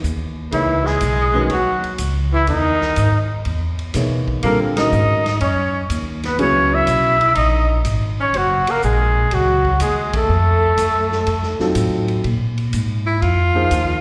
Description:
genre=modal jazz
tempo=123 BPM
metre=4/4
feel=swing 69% on 8ths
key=unclear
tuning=A4 = 441 Hz
part: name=upright bass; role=bass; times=0.0-14.0 s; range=F#1 to B2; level=-22 LUFS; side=equal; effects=none
part: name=vintage drum kit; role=drums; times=0.0-13.9 s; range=hi-hat, kick drum, ride cymbal, snare drum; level=-33 LUFS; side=equal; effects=none
part: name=mellow trumpet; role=melody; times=0.5-11.7 s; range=D#4 to E5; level=-21 LUFS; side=equal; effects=plate reverb, slapback echo
part: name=clear tenor saxophone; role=second line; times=0.5-14.0 s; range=D#3 to F4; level=-25 LUFS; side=equal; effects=slapback echo
part: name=warm grand piano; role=accompaniment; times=0.5-7.1, 11.6-14.0 s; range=C#3 to C#5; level=-24 LUFS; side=equal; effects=none
room=light reverb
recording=live gig heard through the venue's PA, recital hall reverb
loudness=-18 LUFS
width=mono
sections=0.0-12.2 A section; 12.2-14.0 B section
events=band accent 4.7, 10.0; tenor saxophone solo 12.2-14.0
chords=0.0 C#m11; 4.4 F#; 10.3 F7b9; 12.2 Bb7sus2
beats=0.03 | 0.52 1.01 1.50 1.99 | 2.48 2.97 3.46 3.94 | 4.43 4.92 5.41 5.90 | 6.39 6.88 7.36 7.85 | 8.34 8.83 9.31 9.80 | 10.29 10.78 11.27 11.76 | 12.25 12.73 13.22 13.71

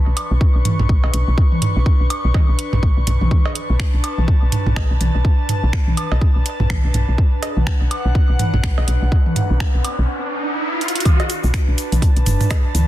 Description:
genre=minimal techno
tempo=124 BPM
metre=4/4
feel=swing 59% on 16ths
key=B minor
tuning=A4 = 440 Hz
part: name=airy breathy pad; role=texture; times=0.0-12.9 s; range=D4 to C#6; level=-27 LUFS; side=left 1 dB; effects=chorus, sidechain pumping
part: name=woody FM bass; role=bass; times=0.1-12.8 s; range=F#1 to D2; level=-18 LUFS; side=equal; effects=sidechain pumping
part: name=house drum kit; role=drums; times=0.2-12.9 s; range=finger snaps, hi-hat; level=-28 LUFS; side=right 2 dB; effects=soft clipping on snare
part: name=electronic woodblock, toms and cowbell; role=percussion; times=0.2-12.9 s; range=none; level=-23 LUFS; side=right 2 dB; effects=overdrive, dub echo
part: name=electronic kick drum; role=drums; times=0.4-12.6 s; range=none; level=-16 LUFS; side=equal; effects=none
part: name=riser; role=sound effects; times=8.8-11.1 s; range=none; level=-25 LUFS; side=equal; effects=none
part: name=tube shaker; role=percussion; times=11.1-12.9 s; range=none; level=-31 LUFS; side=left 5 dB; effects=none
room=little or no reverb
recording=dense, heavily limited modern master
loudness=-15 LUFS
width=side -14 dB against mid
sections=0.0-11.1 A section; 11.1-12.9 B section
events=riser 8.8-11.1; stop 10.1-11.1; drum fill 10.8; drop 11.1-12.9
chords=0.0 Bm7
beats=0.41 0.89 | 1.38 1.86 2.35 2.83 | 3.31 3.80 4.28 4.76 | 5.25 5.73 6.22 6.70 | 7.18 7.67 8.15 8.63 | 9.12 9.60 10.09 10.57 | 11.05 11.54 12.02 12.51

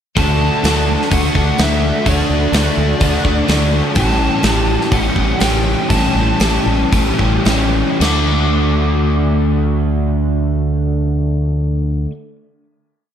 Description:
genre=rock, shoegaze and dream pop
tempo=107-127 BPM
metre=4/4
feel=straight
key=D major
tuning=A4 = 440 Hz
part: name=dark smooth lead guitar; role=melody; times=0.2-12.1 s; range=D5 to D6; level=-23 LUFS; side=right 1 dB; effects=overdrive, ping-pong delay
part: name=crunchy overdriven guitar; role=riff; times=0.2-12.1 s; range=A2 to G4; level=-16 LUFS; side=equal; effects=analog chorus
part: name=growling fingered electric bass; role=bass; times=0.2-12.1 s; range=A1 to D2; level=-17 LUFS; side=equal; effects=overdrive
part: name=big rock drum kit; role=drums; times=0.2-8.1 s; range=crash cymbal, hi-hat, kick drum, snare drum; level=-19 LUFS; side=equal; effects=none
room=moderate plate reverb, RT60 1.2 s, small room ambience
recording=dreamy mix soaked in reverb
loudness=-13 LUFS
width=side -9 dB against mid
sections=0.2-8.0 verse; 8.0-12.5 final chord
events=slowing down 4.0-8.0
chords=0.2 D; 4.0 A5; 8.0 D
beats=| 0.17 0.64 1.11 1.59 | 2.06 2.54 3.01 3.49 | 3.96 4.44 4.92 5.41 | 5.90 6.41 6.93 7.46 | 8.01 8.57 9.13 9.69 | 10.25 10.81 11.36 11.92

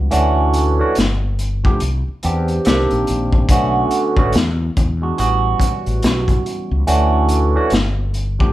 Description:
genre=R&B, neo-soul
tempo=71 BPM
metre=4/4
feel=swing 61% on 16ths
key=unclear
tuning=A4 = 440 Hz
part: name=barky tine electric piano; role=accompaniment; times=0.0-8.5 s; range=D3 to G4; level=-18 LUFS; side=right 2 dB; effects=overdrive, phaser
part: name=mellow fretless electric bass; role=bass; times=0.0-8.4 s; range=G1 to E2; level=-18 LUFS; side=left 1 dB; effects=none
part: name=crunchy breakbeat drum kit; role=drums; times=0.1-8.5 s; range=hi-hat, kick drum, snare drum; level=-18 LUFS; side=left 1 dB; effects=none
room=light reverb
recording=band playing live in one room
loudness=-14 LUFS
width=side -15 dB against mid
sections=0.0-8.5 A section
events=none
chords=0.1 Dmaj9; 1.0 G7; 1.8 Cmaj9; 2.6 Cm9; 3.5 Bm9; 4.3 E9; 5.2 A13; 6.9 Dmaj9; 7.7 G7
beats=| 0.11 0.95 1.80 2.64 | 3.49 4.33 5.18 6.02 | 6.87 7.71

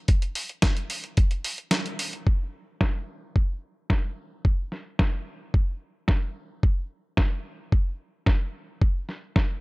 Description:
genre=nu-disco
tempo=110 BPM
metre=4/4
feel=straight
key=none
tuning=none
part: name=dusty soul sampler-style drum kit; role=drums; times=0.1-9.5 s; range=hi-hat, snare drum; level=-28 LUFS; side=equal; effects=low-pass filter on hats, low-pass filter on snare
part: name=electronic kick drum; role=drums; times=0.1-9.5 s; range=none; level=-22 LUFS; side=equal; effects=none
room=little or no reverb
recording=dry, gritty hardware recording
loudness=-24 LUFS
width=side -25 dB against mid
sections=0.0-2.3 A section; 2.3-9.6 B section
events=kick drops out 1.7-2.3; band accent 1.7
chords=none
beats=| 0.09 0.63 1.18 1.73 | 2.27 2.81 3.36 3.91 | 4.45 5.00 5.54 6.09 | 6.63 7.18 7.72 8.27 | 8.81 9.36

